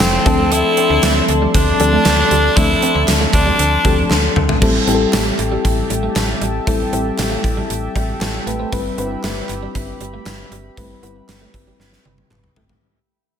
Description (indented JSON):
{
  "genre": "1980s-style pop",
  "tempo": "117 BPM",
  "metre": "4/4",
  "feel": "straight",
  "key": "A minor",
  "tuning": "A4 = 438 Hz",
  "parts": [
    { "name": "raspy tenor saxophone", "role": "melody", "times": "0.0-4.1 s", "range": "C4 to E4", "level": "-17 LUFS", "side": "right 1 dB", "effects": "slapback echo" },
    { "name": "mellow FM electric piano", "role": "accompaniment", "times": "0.0-12.8 s", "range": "F3 to A5", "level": "-20 LUFS", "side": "left 5 dB", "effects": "chorus, slapback echo" },
    { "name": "warm analog pad", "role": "sustained chords", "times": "0.0-12.8 s", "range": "F3 to C6", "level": "-26 LUFS", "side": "equal", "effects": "chorus" },
    { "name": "electric guitar at the edge of break-up", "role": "riff", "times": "0.0-12.8 s", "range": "G3 to C4", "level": "-26 LUFS", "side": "right 5 dB", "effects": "ensemble chorus, slapback echo" },
    { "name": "slap-like FM bass", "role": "bass", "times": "0.0-12.8 s", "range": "F1 to D2", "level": "-21 LUFS", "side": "equal", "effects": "none" },
    { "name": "gated 80s drum kit", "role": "drums", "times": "0.0-12.8 s", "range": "crash cymbal, hi-hat, kick drum, snare drum, tambourine, toms", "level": "-18 LUFS", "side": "right 1 dB", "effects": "none" },
    { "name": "group handclap", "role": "percussion", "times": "0.0-12.4 s", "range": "none", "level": "-34 LUFS", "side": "right 3 dB", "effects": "none" }
  ],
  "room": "moderate lush hall reverb, RT60 2.3 s",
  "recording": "big arena sound",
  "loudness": "-13 LUFS",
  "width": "side -8 dB against mid",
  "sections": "0.0-4.6 A section; 4.6-12.8 B section",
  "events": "drum fill 4.1-4.6, 11.8-12.8; fade-out 4.6-12.8; FM electric piano fill 7.7-8.7",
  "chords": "0.3 Dm7; 4.6 Am7; 8.7 Cmaj7/G"
}